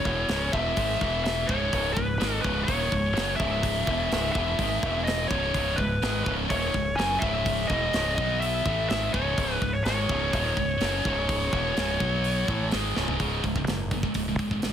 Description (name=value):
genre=heavy metal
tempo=126 BPM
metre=4/4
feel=straight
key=C# minor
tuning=A4 = 440 Hz
part: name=high-gain lead guitar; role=melody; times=0.0-12.7 s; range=B4 to G#5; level=-28 LUFS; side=left 1 dB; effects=distortion, ping-pong delay
part: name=high-gain distorted guitar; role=riff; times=0.0-14.7 s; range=C#2 to B3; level=-28 LUFS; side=right 1 dB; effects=distortion
part: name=growling fingered electric bass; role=bass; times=0.1-14.7 s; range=C#1 to B1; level=-30 LUFS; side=equal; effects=overdrive
part: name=tight metal drum kit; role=drums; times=0.1-14.7 s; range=hi-hat, kick drum, snare drum, toms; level=-31 LUFS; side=equal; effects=none
room=studio reverb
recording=none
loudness=-24 LUFS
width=side -9 dB against mid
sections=0.0-13.2 A section; 13.2-14.7 B section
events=drum fill 13.0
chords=0.0 C#m; 1.0 E5; 1.5 C#m; 4.8 E5; 5.3 C#m; 8.2 B5; 8.7 C#m; 12.0 B5; 12.5 C#m; 13.2 C#5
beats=0.29 0.77 1.25 | 1.73 2.20 2.68 3.16 | 3.64 4.12 4.59 5.07 | 5.55 6.03 6.50 6.98 | 7.46 7.94 8.42 8.89 | 9.37 9.85 10.33 10.81 | 11.29 11.76 12.24 12.72 | 13.20 13.68 14.15 14.63